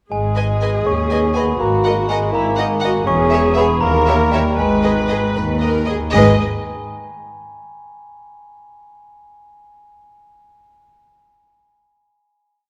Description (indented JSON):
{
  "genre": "cinematic, playful, whimsical film cue",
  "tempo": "76-82 BPM (dotted quarters)",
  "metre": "6/8",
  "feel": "straight",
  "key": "G# minor",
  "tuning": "A4 = 440 Hz",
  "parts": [
    { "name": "glockenspiel with rubber mallets", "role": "melody", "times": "0.1-6.4 s", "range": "G5 to C#6", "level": "-26 LUFS", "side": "equal", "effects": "none" },
    { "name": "mellow bassoon", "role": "accompaniment", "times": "0.1-6.4 s", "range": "G3 to C#4", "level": "-24 LUFS", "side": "equal", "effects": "none" },
    { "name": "rich studio viola section", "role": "accompaniment", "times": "0.1-6.4 s", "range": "D#4 to B4", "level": "-24 LUFS", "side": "equal", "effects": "none" },
    { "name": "warm studio cello section", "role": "bass", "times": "0.1-6.4 s", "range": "D#2 to G#2", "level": "-24 LUFS", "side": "equal", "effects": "none" },
    { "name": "warm studio double bass section", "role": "bass", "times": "0.1-6.4 s", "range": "E1 to D#2", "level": "-24 LUFS", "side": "equal", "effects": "none" },
    { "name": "clear studio violin section", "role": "melody", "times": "0.4-6.4 s", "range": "D#5 to G#5", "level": "-30 LUFS", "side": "equal", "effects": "none" },
    { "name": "rich studio violin section", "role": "second line", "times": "0.4-6.4 s", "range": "G4 to D#5", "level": "-26 LUFS", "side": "equal", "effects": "none" }
  ],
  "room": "moderate concert hall reverb, RT60 1.7 s",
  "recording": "none",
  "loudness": "-16 LUFS",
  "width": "mono",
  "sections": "0.1-6.1 A section; 6.1-7.7 final chord",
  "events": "none",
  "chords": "0.1 G#m; 1.6 D#m/G#; 3.1 C#m/E; 3.8 D#7b9; 4.6 G#m; 6.1 N.C.",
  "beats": "| 0.12 0.86 | 1.60 2.33 | 3.07 3.81 | 4.58 5.35 | 6.14"
}